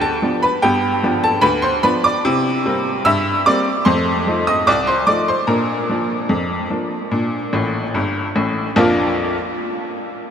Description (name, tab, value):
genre	ragtime piano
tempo	74 BPM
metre	2/4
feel	straight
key	Bb major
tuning	A4 = 441 Hz
part	bright upright piano	solo	0.0-9.4 s	G1 to E6	-15 LUFS	equal	analog delay
room	wet huge ambient reverb, RT60 6.3 s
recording	dreamy mix soaked in reverb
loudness	-15 LUFS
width	side -8 dB against mid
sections	0.0-8.8 A section; 8.8-10.3 B section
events	upright piano fill 7.5-8.8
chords	0.0 G7; 2.2 C7; 3.9 F7; 5.5 Bb